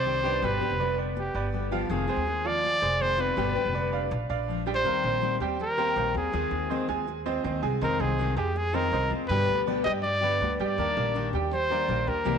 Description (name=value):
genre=latin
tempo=162 BPM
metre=4/4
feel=straight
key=unclear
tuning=A4 = 440 Hz
part: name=clear trumpet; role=melody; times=0.0-12.4 s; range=G4 to Eb5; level=-28 LUFS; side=equal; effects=none
part: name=fingerpicked steel-string acoustic guitar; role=accompaniment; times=0.0-12.4 s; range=B2 to G4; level=-32 LUFS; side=left 13 dB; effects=none
part: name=bright concert grand piano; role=arpeggios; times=0.0-12.4 s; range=F3 to Ab5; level=-32 LUFS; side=right 11 dB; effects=none
part: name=upright bass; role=bass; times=0.0-12.4 s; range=F1 to G2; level=-32 LUFS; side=equal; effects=none
room=moderate plate reverb, RT60 2.9 s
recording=1960s-style stereo with parts hard left and right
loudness=-24 LUFS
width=side -7 dB against mid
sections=0.0-4.9 A section; 4.9-12.4 B section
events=none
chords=0.4 G; 1.9 Fm7; 3.4 G; 4.1 Bb7; 4.9 Eb6; 6.3 Ab6/Eb; 9.3 G; 10.8 Ebmaj7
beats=0.06 | 0.42 0.79 1.16 1.53 | 1.90 2.27 2.64 3.01 | 3.38 3.75 4.12 4.49 | 4.86 5.23 5.60 5.97 | 6.34 6.71 7.08 7.45 | 7.82 8.19 8.56 8.93 | 9.30 9.67 10.04 10.41 | 10.78 11.15 11.52 11.89 | 12.26